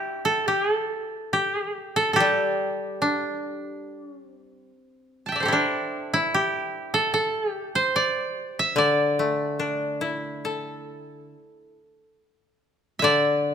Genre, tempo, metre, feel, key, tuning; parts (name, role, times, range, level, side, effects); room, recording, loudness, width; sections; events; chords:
japanese traditional, Japanese chamber music; 72 BPM; 4/4; uneven beats, rubato; D suspended pentatonic; A4 = 439 Hz
koto; melody; 0.0-13.5 s; D4 to A5; -23 LUFS; right 1 dB
koto; accompaniment; 2.2-13.5 s; D3 to A4; -24 LUFS; left 2 dB
light reverb; -22 LUFS; side -8 dB against mid
0.0-12.2 A section; 12.2-13.5 B section